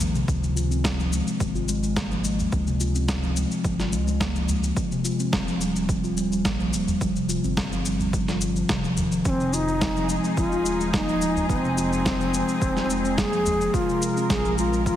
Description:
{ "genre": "organic downtempo", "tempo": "107 BPM", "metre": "4/4", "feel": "straight", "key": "F minor", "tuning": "A4 = 440 Hz", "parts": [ { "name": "steel tongue drum", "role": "arpeggios", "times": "0.0-15.0 s", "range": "C3 to F4", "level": "-26 LUFS", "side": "left 1 dB", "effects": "low-pass filter, tape echo" }, { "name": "warm sub bass", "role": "bass", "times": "0.0-15.0 s", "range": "Eb1 to Db2", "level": "-29 LUFS", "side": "right 1 dB", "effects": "tube saturation" }, { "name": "electronic shaker and snare drum", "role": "drums", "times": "0.0-15.0 s", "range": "none", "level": "-30 LUFS", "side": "equal", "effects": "none" }, { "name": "udu", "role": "percussion", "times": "0.0-13.6 s", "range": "none", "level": "-33 LUFS", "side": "equal", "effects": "none" }, { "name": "electronic kick drum", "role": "drums", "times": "0.3-15.0 s", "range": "none", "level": "-30 LUFS", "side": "right 1 dB", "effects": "overdrive" }, { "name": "breathy bright low ney", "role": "melody", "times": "9.3-15.0 s", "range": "C4 to Ab4", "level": "-25 LUFS", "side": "equal", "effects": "ping-pong delay, shimmer reverb" }, { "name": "muted studio string section", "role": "sustained chords", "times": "9.3-15.0 s", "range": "F3 to Bb4", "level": "-30 LUFS", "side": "right 1 dB", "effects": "sidechain pumping, shimmer reverb" } ], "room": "moderate lush hall reverb, RT60 2.8 s", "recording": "heavily compressed radio sound, multiband compression", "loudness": "-21 LUFS", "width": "side -11 dB against mid", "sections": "0.0-15.0 A section", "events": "filter sweep on steel tongue drum 0.0-15.0", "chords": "0.3 Dbmaj7; 4.8 Eb69; 9.3 Fm7; 13.7 Bb7(no3)" }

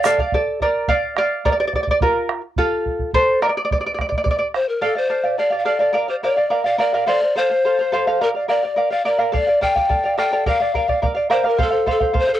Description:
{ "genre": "andean folk, Andean ensemble", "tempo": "106 BPM", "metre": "2/4", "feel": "straight", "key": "D minor", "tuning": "A4 = 440 Hz", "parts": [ { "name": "charango", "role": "accompaniment", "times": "0.0-12.4 s", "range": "F4 to F5", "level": "-19 LUFS", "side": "right 1 dB", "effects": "cassette tape" }, { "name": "bombo", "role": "percussion", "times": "0.0-4.7, 9.3-12.3 s", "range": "none", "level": "-24 LUFS", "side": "right 2 dB", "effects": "none" }, { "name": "breathy mellow pan flute", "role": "melody", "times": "4.6-12.4 s", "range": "A4 to G5", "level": "-19 LUFS", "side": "left 2 dB", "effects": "cassette tape" } ], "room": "light reverb", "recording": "home recording on cassette", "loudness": "-16 LUFS", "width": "side -12 dB against mid", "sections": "0.3-4.8 A section; 4.8-12.4 B section", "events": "charango solo 0.3-4.8", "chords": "0.3 D5; 1.4 N.C.; 2.6 F; 3.7 N.C.; 4.8 Dm; 6.0 Bb; 7.1 F; 8.2 Bb; 9.3 Dm; 10.5 Bb; 11.6 F" }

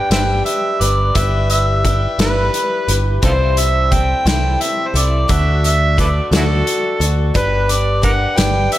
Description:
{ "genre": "folk rock and heartland rock", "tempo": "58 BPM (dotted quarters)", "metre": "6/8", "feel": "straight", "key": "G major", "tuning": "A4 = 440 Hz", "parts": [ { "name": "overdriven harmonica", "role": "melody", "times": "0.0-8.8 s", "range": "E4 to G5", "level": "-18 LUFS", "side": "right 1 dB", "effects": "none" }, { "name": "picked twelve-string acoustic guitar", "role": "accompaniment", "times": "0.0-8.8 s", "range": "C3 to B4", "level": "-22 LUFS", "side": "left 2 dB", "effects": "slapback echo" }, { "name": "deep dub picked electric bass", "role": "bass", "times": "0.1-8.7 s", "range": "G1 to D2", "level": "-17 LUFS", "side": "equal", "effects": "none" }, { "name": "loose indie drum kit", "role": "drums", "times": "0.1-8.8 s", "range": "hi-hat, kick drum, snare drum", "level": "-19 LUFS", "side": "equal", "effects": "none" } ], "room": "moderate concert hall reverb, RT60 2.0 s", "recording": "big arena sound", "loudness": "-13 LUFS", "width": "side -14 dB against mid", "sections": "0.0-8.8 A section", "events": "none", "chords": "0.0 G; 1.1 Em/G; 3.2 C6; 5.3 D; 7.3 G" }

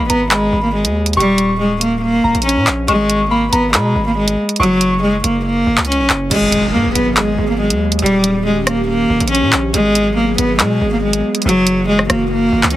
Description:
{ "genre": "hip hop, drill", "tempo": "140 BPM", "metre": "4/4", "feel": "half-time", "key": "G# minor", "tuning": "A4 = 438 Hz", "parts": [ { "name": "warm cello", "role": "melody", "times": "0.0-12.8 s", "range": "F#3 to C#4", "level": "-15 LUFS", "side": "equal", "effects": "tape echo" }, { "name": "soft synth bell", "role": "second line", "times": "0.0-5.0 s", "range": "A#5 to C#6", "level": "-20 LUFS", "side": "left 1 dB", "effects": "chorus, tape echo" }, { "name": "distorted 808-style bass", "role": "bass", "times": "0.0-12.8 s", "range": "D#1 to B2", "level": "-20 LUFS", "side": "equal", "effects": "distortion" }, { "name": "drill drum kit", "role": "drums", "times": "0.1-12.8 s", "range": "crash cymbal, handclaps, hi-hat, rim click", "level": "-16 LUFS", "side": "equal", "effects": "none" }, { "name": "airy breathy pad", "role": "sustained chords", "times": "6.3-12.8 s", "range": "D#3 to G#4", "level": "-22 LUFS", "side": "equal", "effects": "chorus" }, { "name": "impact", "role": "sound effects", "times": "6.3-8.0 s", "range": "none", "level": "-25 LUFS", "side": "equal", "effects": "none" } ], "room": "moderate booth ambience, RT60 0.2 s", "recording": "heavily compressed radio sound", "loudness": "-12 LUFS", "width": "side -14 dB against mid", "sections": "0.0-6.3 A section; 6.3-12.8 B section", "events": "impact 6.3-8.0", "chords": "0.0 G#m; 1.2 D#7; 2.9 G#m; 4.6 F#; 6.3 G#m7; 8.0 D#7; 9.7 G#m7; 11.5 F#7" }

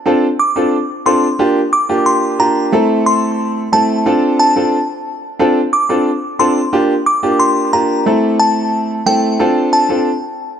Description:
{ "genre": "dancehall", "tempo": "90 BPM", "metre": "4/4", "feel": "straight", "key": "unclear", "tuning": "A4 = 438 Hz", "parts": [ { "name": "warm baby grand piano", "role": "accompaniment", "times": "0.1-10.1 s", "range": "A3 to A4", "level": "-14 LUFS", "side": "equal", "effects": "none" }, { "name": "glassy synth bell", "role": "melody", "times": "0.4-9.8 s", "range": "G5 to D6", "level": "-16 LUFS", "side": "equal", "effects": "chorus, tremolo, ping-pong delay" } ], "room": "moderate plate reverb, RT60 3.4 s", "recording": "dark, warm production", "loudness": "-12 LUFS", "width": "side -8 dB against mid", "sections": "0.0-10.6 A section", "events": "none", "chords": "0.0 F6; 1.4 Gm7; 2.7 Am; 4.1 F6; 6.7 Gm7; 8.1 Am; 9.4 F6" }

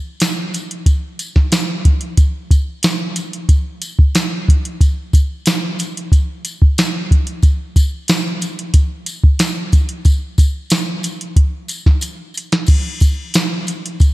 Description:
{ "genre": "indie pop", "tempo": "91 BPM", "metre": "4/4", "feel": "straight", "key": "none", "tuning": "none", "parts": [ { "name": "soft vintage rhythm box", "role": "drums", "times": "0.2-14.1 s", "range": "crash cymbal, hi-hat, kick drum, snare drum", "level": "-13 LUFS", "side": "equal", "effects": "none" }, { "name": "tambourine", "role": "percussion", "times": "0.2-14.1 s", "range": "none", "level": "-30 LUFS", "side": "left 2 dB", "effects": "none" } ], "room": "moderate concert hall reverb, RT60 2.0 s", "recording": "big arena sound", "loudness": "-14 LUFS", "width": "side -18 dB against mid", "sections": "0.0-2.2 A section; 2.2-14.1 B section", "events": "drum fill 12.0-12.7", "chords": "none" }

